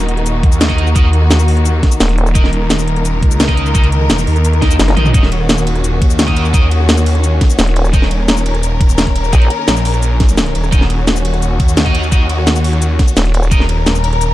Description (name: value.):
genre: dark technical drum and bass.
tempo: 172 BPM.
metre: 4/4.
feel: straight.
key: Eb minor.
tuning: A4 = 441 Hz.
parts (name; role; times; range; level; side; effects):
warm studio string section; sustained chords; 0.0-14.3 s; Eb3 to Bb4; -20 LUFS; left 2 dB; sidechain pumping.
phased detuned saw bass; bass; 0.0-14.3 s; Eb1 to Eb2; -14 LUFS; equal; phaser, overdrive, sidechain pumping.
drum and bass drum kit; drums; 0.0-14.3 s; hi-hat, ride cymbal, rim click, shaker, snare drum, toms; -17 LUFS; equal; none.
electronic kick drum; drums; 0.4-13.6 s; none; -12 LUFS; equal; none.
high-gain distorted guitar; stabs; 0.7-13.6 s; Eb4 to Eb5; -23 LUFS; right 2 dB; distortion, dub echo.
vowel-sweep wobble bass; bass; 2.0-2.3, 4.8-5.0, 7.6-9.5, 13.2-13.5 s; Eb1 to Bb1; -12 LUFS; equal; chorus.
swell; sound effects; 4.6-5.1 s; none; -24 LUFS; left 3 dB; none.
room: little or no reverb.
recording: dark, warm production.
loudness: -10 LUFS.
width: side -15 dB against mid.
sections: 0.0-14.3 A section.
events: swell 4.6-5.1; drum fill 4.9.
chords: 0.0 Ebm.